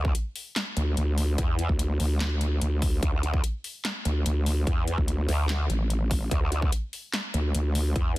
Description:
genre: heavy wobble dubstep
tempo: 146 BPM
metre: 4/4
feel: half-time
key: unclear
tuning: A4 = 441 Hz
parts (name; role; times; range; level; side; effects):
- growl bass; bass; 0.0-8.2 s; D2 to E2; -26 LUFS; equal; chorus, overdrive
- electronic kick drum; drums; 0.0-8.0 s; none; -26 LUFS; equal; none
- big-room dance drum kit; drums; 0.1-8.2 s; handclaps, hi-hat, snare drum; -33 LUFS; left 1 dB; none
- vowel-sweep wobble bass; bass; 0.8-7.9 s; A1 to D2; -24 LUFS; equal; chorus, overdrive
room: little or no reverb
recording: dense, heavily limited modern master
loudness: -24 LUFS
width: side -18 dB against mid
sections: 0.0-8.2 A section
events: none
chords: none

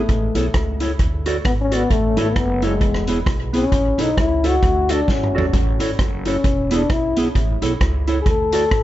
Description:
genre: ska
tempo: 132 BPM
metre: 4/4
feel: swing 58% on 8ths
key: A major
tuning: A4 = 440 Hz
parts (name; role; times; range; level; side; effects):
- dark trombone; melody; 0.0-8.8 s; G#3 to A4; -21 LUFS; left 3 dB; tape echo, plate reverb
- upright bass; bass; 0.1-8.8 s; E1 to D2; -23 LUFS; equal; none
- vintage drum kit; drums; 0.1-8.8 s; hi-hat, kick drum, rim click, snare drum, toms; -21 LUFS; equal; tape echo
- mellow electric guitar; accompaniment; 0.4-8.6 s; B3 to D5; -24 LUFS; right 2 dB; spring reverb, tape echo, plate reverb
room: light reverb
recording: nothing above 7.8 kHz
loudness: -16 LUFS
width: side -14 dB against mid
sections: 0.0-8.8 A section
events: trombone solo 0.0-8.8; drum fill 5.1-5.5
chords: 0.1 A; 1.0 D; 1.9 A; 2.8 E; 3.7 A; 4.6 D; 5.5 A; 6.4 E; 7.4 A; 8.3 D

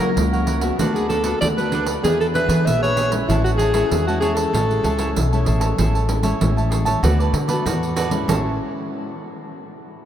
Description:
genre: samba and choro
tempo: 96 BPM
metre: 4/4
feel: straight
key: A major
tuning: A4 = 440 Hz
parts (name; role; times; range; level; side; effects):
- bright alto saxophone; melody; 0.0-5.4 s; E4 to E5; -23 LUFS; equal; none
- cavaquinho; accompaniment; 0.0-8.5 s; D4 to A5; -26 LUFS; right 2 dB; none
- nylon-string guitar; accompaniment; 0.0-9.1 s; A2 to G#4; -26 LUFS; left 3 dB; none
- upright bass; bass; 0.0-8.6 s; A1 to E3; -21 LUFS; equal; none
- pandeiro; percussion; 0.2-8.4 s; none; -26 LUFS; right 4 dB; none
room: wet cathedral reverb, RT60 6.9 s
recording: in a vast, echoing space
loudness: -17 LUFS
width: side -10 dB against mid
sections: 0.0-5.8 A section; 5.8-8.3 B section; 8.3-10.1 C section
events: none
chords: 0.0 F#7/C#; 0.8 Bm7/D; 2.0 E7; 3.3 Amaj7; 7.0 D6; 8.3 Amaj7

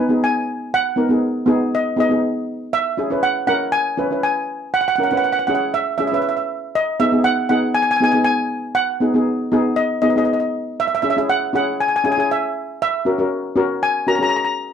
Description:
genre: calypso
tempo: 119 BPM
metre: 4/4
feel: straight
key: unclear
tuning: A4 = 444 Hz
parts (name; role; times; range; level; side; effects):
- steel pan; melody; 0.0-14.5 s; D#5 to A#5; -19 LUFS; right 1 dB; none
- steel pan; accompaniment; 0.0-14.7 s; B3 to B4; -19 LUFS; left 1 dB; none
room: moderate small room ambience, RT60 0.5 s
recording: dark, warm production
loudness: -16 LUFS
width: side -8 dB against mid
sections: 0.0-14.7 A section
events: none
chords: 0.0 G#m7; 2.7 C#m7; 6.7 G#m7; 10.8 C#m; 12.8 F#7

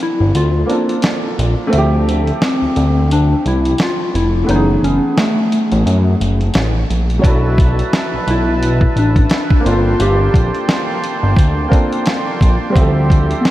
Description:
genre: lo-fi hip hop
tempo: 87 BPM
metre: 4/4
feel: swing 58% on 16ths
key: unclear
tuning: A4 = 441 Hz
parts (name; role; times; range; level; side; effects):
- soft struck synth lead; melody; 0.0-13.5 s; A3 to G4; -19 LUFS; left 2 dB; chorus, tremolo, low-pass filter, diffuse ambient delay
- felt-muted upright piano; accompaniment; 0.0-13.5 s; E3 to E5; -21 LUFS; right 1 dB; low-pass filter
- dusty soul sampler-style drum kit; drums; 0.0-13.5 s; hi-hat, kick drum, snare drum; -17 LUFS; equal; none
- fat analog bass; bass; 0.2-13.3 s; F1 to F#2; -15 LUFS; equal; none
- accordion; sustained chords; 7.2-13.5 s; Bb3 to C6; -22 LUFS; right 2 dB; light tremolo tuning, low-pass filter
room: moderate huge ambient reverb, RT60 9.0 s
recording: dreamy mix soaked in reverb, vinyl crackle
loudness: -12 LUFS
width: side -15 dB against mid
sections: 0.0-13.5 A section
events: break 0.0-7.2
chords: 0.0 Gm11; 1.7 Dm11; 4.5 F#m11; 7.2 Bm11; 9.7 Gm11; 12.8 Dm11

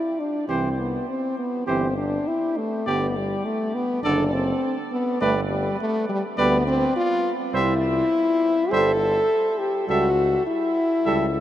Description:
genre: classical, brass quintet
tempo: 102 BPM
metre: 4/4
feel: rubato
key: unclear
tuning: A4 = 440 Hz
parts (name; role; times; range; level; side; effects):
- mellow French horn; accompaniment; 0.0-11.4 s; G3 to A4; -22 LUFS; left 1 dB; none
- clear trumpet; melody; 0.5-11.3 s; C5 to E5; -32 LUFS; left 3 dB; none
- mellow flugelhorn; second line; 0.5-11.3 s; G4 to C5; -30 LUFS; right 5 dB; none
- clear trombone; accompaniment; 0.5-11.3 s; D3 to G3; -33 LUFS; right 4 dB; none
- warm tuba; bass; 0.5-11.4 s; F#1 to D2; -27 LUFS; right 1 dB; none
room: wet huge ambient reverb, RT60 7.5 s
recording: in a vast, echoing space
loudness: -20 LUFS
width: side -12 dB against mid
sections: 0.0-11.4 A section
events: none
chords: 0.5 C; 2.9 G5; 4.0 D7/F#; 5.2 G; 7.5 C; 9.9 A7/C#

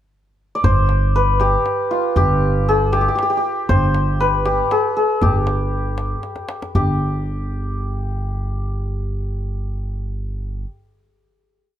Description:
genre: Persian modal ensemble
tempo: 79 BPM (dotted quarters)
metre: 6/8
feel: straight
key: G dastgah homayun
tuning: A4 = 441 Hz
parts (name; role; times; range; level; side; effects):
- santur; melody; 0.6-10.6 s; F4 to D5; -20 LUFS; left 1 dB; none
- upright bass; bass; 0.6-10.6 s; G1; -20 LUFS; equal; none
- tombak; percussion; 0.6-7.0 s; none; -22 LUFS; left 1 dB; none
room: little or no reverb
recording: dark, warm production, faint mains hum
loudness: -17 LUFS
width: side -11 dB against mid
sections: 0.0-0.6 pickup bar; 0.6-6.7 A section; 6.7-9.8 final note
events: drum fill 6.2-6.7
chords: none

